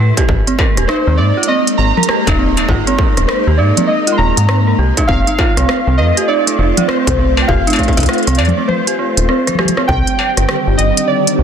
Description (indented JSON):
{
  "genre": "IDM",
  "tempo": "100 BPM",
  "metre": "4/4",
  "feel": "swing 62% on 16ths",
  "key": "unclear",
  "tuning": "A4 = 435 Hz",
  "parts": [
    { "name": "soft string machine", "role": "sustained chords", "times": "0.0-11.4 s", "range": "D3 to G4", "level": "-20 LUFS", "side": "equal", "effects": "phaser, ensemble chorus" },
    { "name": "dark detuned synth bell", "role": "arpeggios", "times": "0.0-9.8 s", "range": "C4 to C5", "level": "-18 LUFS", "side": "right 4 dB", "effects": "chorus, digital delay" },
    { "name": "metallic FM bass", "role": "bass", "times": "0.0-11.4 s", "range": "Eb1 to A2", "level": "-14 LUFS", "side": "equal", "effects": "none" },
    { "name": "electronic kick drum", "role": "drums", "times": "0.2-10.0 s", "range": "none", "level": "-16 LUFS", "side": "equal", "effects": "distortion" },
    { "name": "industrial drum kit", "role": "drums", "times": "0.2-11.4 s", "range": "hi-hat, rim click, struck metal, toms", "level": "-18 LUFS", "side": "left 1 dB", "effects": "soft clipping on snare" },
    { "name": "warbly lo-fi synth keys", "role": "melody", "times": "0.9-11.4 s", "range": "C5 to C6", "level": "-18 LUFS", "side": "equal", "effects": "chorus, vintage 12-bit sampler grit, digital delay" }
  ],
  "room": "light reverb, digital ambience",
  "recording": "dense, heavily limited modern master",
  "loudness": "-11 LUFS",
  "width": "side -8 dB against mid",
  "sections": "0.0-9.9 A section; 9.9-11.4 A section",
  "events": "drum fill 9.3-9.9",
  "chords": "0.3 Absus2; 5.1 F; 9.9 Cmadd9"
}